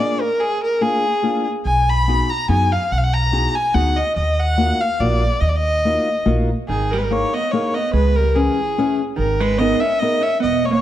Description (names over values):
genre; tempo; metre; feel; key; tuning
musette waltz; 144 BPM; 3/4; swing 54% on 8ths; Eb harmonic minor, G# harmonic minor from 6.7 s; A4 = 440 Hz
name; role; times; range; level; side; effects
warm violin; melody; 0.0-10.8 s; Ab4 to B5; -19 LUFS; left 1 dB; none
fingerpicked steel-string acoustic guitar; accompaniment; 0.0-10.2 s; Bb3 to B4; -23 LUFS; left 3 dB; none
upright bass; bass; 1.7-10.8 s; E1 to F#2; -19 LUFS; equal; none
vintage hollow-body jazz guitar; second line; 6.7-10.8 s; D#3 to C#4; -23 LUFS; right 6 dB; tape echo
room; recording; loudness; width
moderate recital hall reverb, RT60 1.8 s; dark, warm production; -16 LUFS; side -12 dB against mid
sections
0.0-6.7 A section; 6.7-10.8 B section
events
none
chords
0.0 Bb7; 1.7 B6; 4.2 Ebmadd9; 6.7 G#sus2; 7.9 C#m7; 9.2 G#madd9